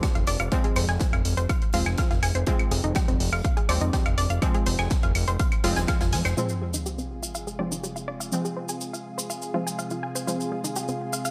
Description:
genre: melodic techno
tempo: 123 BPM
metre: 4/4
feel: straight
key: F minor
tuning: A4 = 438 Hz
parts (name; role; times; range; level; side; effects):
- analog pluck; arpeggios; 0.0-11.3 s; C4 to Ab5; -34 LUFS; equal; chorus, sidechain pumping, delay
- synth brass stab; stabs; 0.0-11.3 s; F3 to C4; -35 LUFS; equal; chorus, sidechain pumping, delay
- big rock drum kit; drums; 0.0-6.4 s; hi-hat, snare drum; -42 LUFS; equal; sidechain pumping on hats, high-pass filter on hats, high-pass filter on snare, high-pass filter on room, gated reverb
- electronic hi-hat and claves; drums; 0.0-6.3 s; none; -34 LUFS; equal; sidechain pumping on hats, low-pass filter on hats, sidechain pumping on perc, low-pass filter on perc, low-pass filter on room
- electronic kick drum; drums; 0.0-6.0 s; none; -27 LUFS; equal; none
- fat analog bass; bass; 0.2-6.3 s; Eb1 to F2; -28 LUFS; equal; sidechain pumping
- lush unison pad; sustained chords; 6.4-11.3 s; C3 to Ab4; -36 LUFS; equal; chorus, sidechain pumping
- cabasa; percussion; 6.4-11.3 s; none; -36 LUFS; equal; none
- sub drop; sound effects; 6.4-8.3 s; none; -36 LUFS; equal; none
room: light reverb, digital ambience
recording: bright 1980s-style digital production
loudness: -26 LUFS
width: mono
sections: 0.0-6.4 A section; 6.4-11.3 B section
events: impact 6.4-8.3; filter sweep on analog synth pad 6.4-11.3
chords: 0.0 Fm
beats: 0.03 | 0.52 1.01 1.49 1.98 | 2.47 2.96 3.44 3.93 | 4.42 4.91 5.40 5.88 | 6.37 6.86 7.35 7.83 | 8.32 8.81 9.30 9.79 | 10.27 10.76 11.25

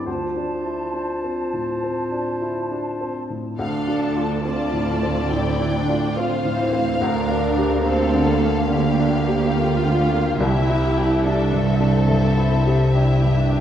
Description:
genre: cinematic, emotional film score for orchestra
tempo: 70 BPM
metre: 4/4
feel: rubato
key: D minor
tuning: A4 = 440 Hz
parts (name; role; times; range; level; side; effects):
- mellow clarinet; second line; 0.0-3.3 s; F4; -27 LUFS; left 1 dB; none
- warm oboe; second line; 0.0-3.2 s; C5; -32 LUFS; equal; none
- clear baby grand piano; accompaniment; 0.0-13.6 s; C2 to G4; -24 LUFS; left 1 dB; none
- flute section; second line; 0.1-3.2 s; A5; -32 LUFS; right 1 dB; none
- rich studio violin section; melody; 3.6-13.6 s; E5 to A5; -28 LUFS; left 2 dB; none
- rich studio violin section; second line; 3.6-13.6 s; G4 to D5; -28 LUFS; left 3 dB; none
- rich studio viola section; accompaniment; 3.6-13.6 s; E3 to F4; -25 LUFS; right 2 dB; none
- rich studio cello section; bass; 3.6-13.6 s; C2 to D2; -25 LUFS; right 3 dB; none
- rich studio double bass section; bass; 3.6-13.6 s; C2 to D2; -23 LUFS; right 1 dB; none
room: wet scoring stage reverb, RT60 1.8 s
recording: heard from further back in the room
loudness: -18 LUFS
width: side -10 dB against mid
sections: 0.0-3.6 A section; 3.6-13.6 A section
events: none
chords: 0.1 Dm7; 7.0 Gm/D; 10.4 Cadd9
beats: | 0.07 0.94 1.82 2.71 | 3.59 4.46 5.32 6.16 | 7.01 7.86 8.71 9.56 | 10.40 11.24 12.08 12.94

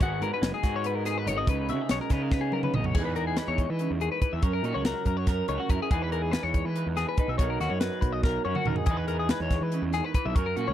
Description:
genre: math rock and midwest emo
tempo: 283 BPM (eighths)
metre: 7/8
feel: straight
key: unclear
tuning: A4 = 439 Hz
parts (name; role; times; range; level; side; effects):
- electric guitar through a small old amp; accompaniment; 0.0-10.7 s; F#2 to B4; -33 LUFS; right 9 dB; harmonic tremolo
- twelve-string electric guitar; arpeggios; 0.0-10.7 s; F#4 to E5; -31 LUFS; left 9 dB; none
- fuzz picked electric bass; bass; 0.0-10.7 s; F#1 to E3; -30 LUFS; equal; overdrive
- crisp fusion drum kit; drums; 0.0-10.7 s; crash cymbal, hi-hat, kick drum, snare drum, toms; -27 LUFS; equal; none
room: little or no reverb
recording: dry, close 1970s-style studio recording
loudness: -25 LUFS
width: side -11 dB against mid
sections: 0.0-2.9 A section; 2.9-10.7 B section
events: drum fill 2.3-2.9, 8.2-8.9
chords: 0.0 G#m7; 1.5 C#m9; 2.9 Emaj7; 4.4 F#7; 5.9 Emaj7; 7.4 Bmaj7; 8.9 Emaj7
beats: | 0.01 0.21 0.42 0.64 0.84 1.05 1.26 | 1.48 1.69 1.90 2.11 2.32 2.53 2.74 | 2.95 3.16 3.37 3.58 3.79 4.00 4.22 | 4.43 4.64 4.85 5.06 5.28 5.49 5.70 | 5.91 6.12 6.33 6.55 6.76 6.97 7.18 | 7.39 7.61 7.82 8.03 8.24 8.45 8.67 | 8.88 9.09 9.30 9.51 9.73 9.94 10.15 | 10.36 10.57

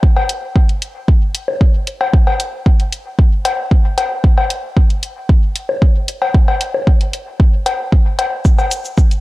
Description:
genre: techno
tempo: 114 BPM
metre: 4/4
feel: straight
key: none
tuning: none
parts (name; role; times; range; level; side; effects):
- electronic kick drum; drums; 0.0-9.1 s; none; -11 LUFS; equal; none
- cowbell and woodblock; percussion; 0.2-8.7 s; none; -20 LUFS; left 3 dB; sidechain pumping on perc, dub echo
- electronic hi-hat and shaker; drums; 0.3-9.2 s; none; -22 LUFS; equal; none
room: little or no reverb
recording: dry, gritty hardware recording, transformer saturation, cassette tape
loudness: -12 LUFS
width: side -19 dB against mid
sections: 0.0-9.2 A section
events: none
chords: none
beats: | 0.03 0.56 1.08 1.61 | 2.13 2.66 3.19 3.71 | 4.24 4.77 5.29 5.82 | 6.34 6.87 7.40 7.92 | 8.45 8.98

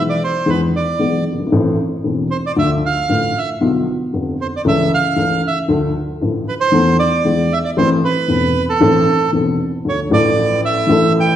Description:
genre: tango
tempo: 115 BPM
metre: 4/4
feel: rubato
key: A harmonic minor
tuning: A4 = 445 Hz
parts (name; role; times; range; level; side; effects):
- bandoneon; melody; 0.0-11.4 s; A4 to G5; -18 LUFS; right 4 dB; none
- dark upright piano; accompaniment; 0.0-11.4 s; E1 to A4; -15 LUFS; left 2 dB; none
room: wet recital hall reverb, RT60 1.4 s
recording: recorded in a church or concert hall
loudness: -14 LUFS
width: side -10 dB against mid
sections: 0.0-9.9 A section; 9.9-11.4 B section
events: none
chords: 0.0 E; 1.5 Am; 2.6 Dm; 3.6 Bdim; 4.7 A/C#; 5.7 Dm; 6.7 Esus4; 7.3 E; 7.8 Am; 9.9 Dm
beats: 0.48 1.01 | 1.53 2.06 2.58 3.11 | 3.63 4.15 4.67 5.19 | 5.71 6.23 6.75 7.26 | 7.78 8.30 8.82 9.35 | 9.87 10.38 10.90

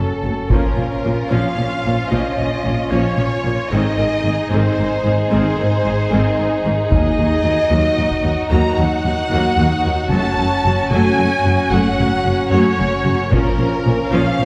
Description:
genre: cinematic, epic orchestral film score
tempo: 75 BPM (dotted quarters)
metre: 12/8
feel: straight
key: Eb dorian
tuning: A4 = 440 Hz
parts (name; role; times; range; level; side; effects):
- warm symphonic violin section; melody; 0.0-14.4 s; A4 to Bb5; -24 LUFS; equal; none
- rich symphonic violin section; second line; 0.0-14.4 s; Db4 to A4; -26 LUFS; equal; none
- warm symphonic viola section; accompaniment; 0.0-14.4 s; Eb3 to Db4; -25 LUFS; equal; none
- warm French horn section; sustained chords; 0.0-14.4 s; F3 to Eb4; -26 LUFS; equal; none
- rich symphonic cello section; bass; 0.0-14.4 s; Eb2 to Bb2; -25 LUFS; equal; none
- warm symphonic double bass section; bass; 0.0-14.4 s; Gb1 to Eb2; -24 LUFS; equal; none
- taiko ensemble; drums; 0.5-1.5, 6.9-8.4, 13.3-14.3 s; none; -22 LUFS; equal; none
room: wet scoring stage reverb, RT60 1.6 s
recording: heard from further back in the room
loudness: -17 LUFS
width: mono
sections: 0.0-14.4 A section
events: none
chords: 0.0 Gbm; 0.5 Bbm; 3.7 Ab; 6.9 Ebm; 10.1 Gbm; 13.3 Bbm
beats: | 0.52 1.32 2.12 2.92 | 3.72 4.52 5.32 6.12 | 6.92 7.72 8.52 9.32 | 10.12 10.92 11.72 12.52 | 13.32 14.12

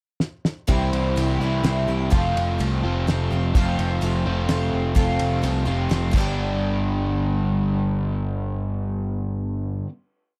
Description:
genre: folk rock and heartland rock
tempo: 126 BPM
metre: 3/4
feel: straight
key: G mixolydian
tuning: A4 = 440 Hz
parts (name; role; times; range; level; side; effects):
- cloth-damped thuddy drum kit; drums; 0.2-6.2 s; crash cymbal, kick drum, ride cymbal, snare drum; -26 LUFS; equal; none
- picked twelve-string acoustic guitar; accompaniment; 0.7-9.9 s; G2 to G4; -31 LUFS; equal; lush chorus
- crunchy overdriven guitar; riff; 0.7-9.9 s; F2 to G4; -28 LUFS; equal; none
- picked electric bass; bass; 0.7-9.8 s; F1 to C2; -27 LUFS; equal; none
room: little or no reverb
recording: none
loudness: -23 LUFS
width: mono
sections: 0.0-0.7 pickup bar; 0.7-6.4 pre-chorus; 6.4-9.2 final hit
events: drum fill 0.2-0.7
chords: 0.0 N.C.; 0.7 C; 2.1 Fadd9; 6.1 G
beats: 0.21 | 0.68 1.16 1.64 | 2.11 2.59 3.06 | 3.54 4.01 4.48 | 4.96 5.43 5.90 | 6.38 6.85 7.33 | 7.80 8.28 8.76

